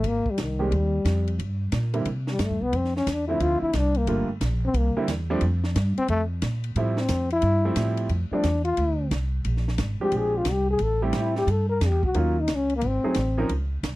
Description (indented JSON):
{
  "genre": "jazz, small-group swing and bop",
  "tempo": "178 BPM",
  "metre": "4/4",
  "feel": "swing 64% on 8ths",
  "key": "F major",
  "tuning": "A4 = 440 Hz",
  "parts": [
    { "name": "dark trombone", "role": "melody", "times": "0.0-13.5 s", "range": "Eb3 to Bb4", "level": "-25 LUFS", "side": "left 2 dB", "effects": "none" },
    { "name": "upright bass", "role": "bass", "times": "0.0-14.0 s", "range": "G1 to C3", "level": "-25 LUFS", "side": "equal", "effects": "none" },
    { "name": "compact cocktail drum kit", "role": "drums", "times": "0.0-13.9 s", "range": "hi-hat, kick drum, ride cymbal, snare drum", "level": "-34 LUFS", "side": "right 1 dB", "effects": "none" },
    { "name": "warm baby grand piano", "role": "accompaniment", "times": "0.6-13.5 s", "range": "D3 to Bb4", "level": "-28 LUFS", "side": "right 3 dB", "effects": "none" }
  ],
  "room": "light reverb",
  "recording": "dry, close 1970s-style studio recording",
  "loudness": "-22 LUFS",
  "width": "side -18 dB against mid",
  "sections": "0.0-8.1 A section; 8.1-14.0 A section",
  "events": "trombone solo 0.0-14.0",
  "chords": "0.0 Abmaj7; 1.4 Gm; 2.1 C; 2.7 Fmaj7; 3.4 Dm7; 4.1 Gm7; 4.8 C7; 5.4 Fmaj7; 8.1 F5; 9.5 Bb13; 10.8 Am7; 12.2 Ebm9; 12.8 Ab7b9"
}